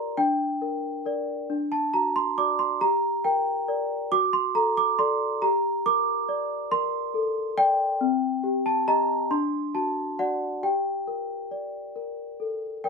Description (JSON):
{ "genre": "classical, lullaby for celesta", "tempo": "46 BPM (dotted quarters)", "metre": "6/8", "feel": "straight", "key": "G minor", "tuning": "A4 = 440 Hz", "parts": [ { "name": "celesta", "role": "solo", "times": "0.0-12.9 s", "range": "C4 to D6", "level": "-23 LUFS", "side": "equal", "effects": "none" } ], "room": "light reverb", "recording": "none", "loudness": "-23 LUFS", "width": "side -4 dB against mid", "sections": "0.0-12.9 A section", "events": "none", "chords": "0.2 Gm/D; 1.5 D; 2.8 Gm; 4.1 D/F#; 5.4 Gm; 8.0 Cm; 9.3 D; 10.6 Gm" }